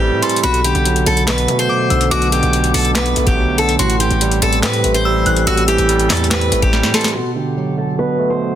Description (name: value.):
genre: hip hop, trap.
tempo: 143 BPM.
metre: 4/4.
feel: half-time.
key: B phrygian.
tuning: A4 = 439 Hz.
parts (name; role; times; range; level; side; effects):
picked steel-string acoustic guitar; melody; 0.0-8.6 s; F#4 to C5; -18 LUFS; left 2 dB; low-pass filter, ping-pong delay.
glassy synth bell; second line; 0.0-7.1 s; B5 to F#6; -23 LUFS; left 2 dB; chorus, ping-pong delay.
overdriven tine electric piano; accompaniment; 0.0-8.6 s; A2 to C4; -19 LUFS; right 6 dB; low-pass filter.
dark analog pad; sustained chords; 0.0-8.6 s; B2 to F#5; -25 LUFS; left 2 dB; chorus, low-pass filter.
distorted 808-style bass; bass; 0.0-6.9 s; A1 to B2; -19 LUFS; left 1 dB; distortion.
booming analog drum machine; drums; 0.2-7.1 s; handclaps, hi-hat, kick drum, snare drum; -19 LUFS; left 1 dB; none.
room: little or no reverb.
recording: dense, heavily limited modern master.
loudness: -13 LUFS.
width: side -10 dB against mid.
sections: 0.0-7.1 A section; 7.1-8.6 B section.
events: drum fill 6.7-7.1; filter sweep 7.1-8.6.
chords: 0.4 Bm7; 3.8 Am7; 7.1 Bm7.